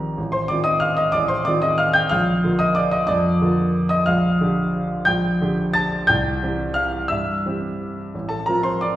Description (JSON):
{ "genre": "classical, piano waltz", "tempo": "164-194 BPM", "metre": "3/4", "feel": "rubato", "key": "Bb major", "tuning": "A4 = 443 Hz", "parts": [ { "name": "warm grand piano", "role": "solo", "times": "0.0-9.0 s", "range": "A1 to A6", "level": "-18 LUFS", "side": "equal", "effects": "none" } ], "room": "wet recital hall reverb, RT60 1.6 s", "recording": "heard from further back in the room", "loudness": "-18 LUFS", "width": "side -13 dB against mid", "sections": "0.0-9.0 A section", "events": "none", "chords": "0.2 F7/A; 2.1 Bb; 4.1 Gm/Bb; 6.1 C; 8.1 F/A" }